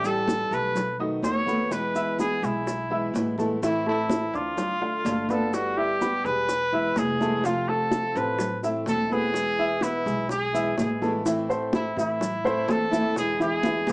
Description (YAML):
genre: latin, Cuban son and guajira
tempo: 126 BPM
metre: 4/4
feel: straight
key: A harmonic minor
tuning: A4 = 440 Hz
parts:
  - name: warm trumpet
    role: melody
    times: 0.0-13.9 s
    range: E4 to C#5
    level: -26 LUFS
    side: equal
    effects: none
  - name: fingerpicked plugged-in steel-string acoustic guitar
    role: accompaniment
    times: 0.0-13.9 s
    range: B2 to F#4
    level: -31 LUFS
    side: equal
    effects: none
  - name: dark grand piano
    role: arpeggios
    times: 0.0-13.9 s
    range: E3 to F6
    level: -28 LUFS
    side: equal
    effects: slapback echo
  - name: upright bass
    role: bass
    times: 0.0-13.9 s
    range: E1 to A2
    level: -38 LUFS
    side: equal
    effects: none
  - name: bongos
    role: percussion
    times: 0.0-13.9 s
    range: none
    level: -32 LUFS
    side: left 1 dB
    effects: none
  - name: congas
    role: percussion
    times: 0.0-13.9 s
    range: none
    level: -30 LUFS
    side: equal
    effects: none
  - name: maracas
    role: percussion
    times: 0.0-13.9 s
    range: none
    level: -43 LUFS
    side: left 1 dB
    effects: none
room: moderate studio ambience, RT60 0.5 s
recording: worn, warbling old tape, cassette tape, warbly pitch drift, small speaker sound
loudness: -23 LUFS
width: side -30 dB against mid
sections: 0.0-11.3 A section; 11.3-13.9 B section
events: drum fill 11.0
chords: 0.0 A7; 0.8 B7; 1.7 E; 3.6 Am; 4.6 Dm; 5.5 G6; 6.5 E; 7.4 F; 8.4 Am; 9.4 E; 11.3 Am; 13.2 E7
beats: 0.28 0.76 1.24 | 1.72 2.19 2.67 3.15 | 3.62 4.10 4.58 5.06 | 5.54 6.01 6.49 6.97 | 7.45 7.92 8.40 8.88 | 9.35 9.83 10.31 10.78 | 11.26 11.74 12.21 12.69 | 13.16 13.64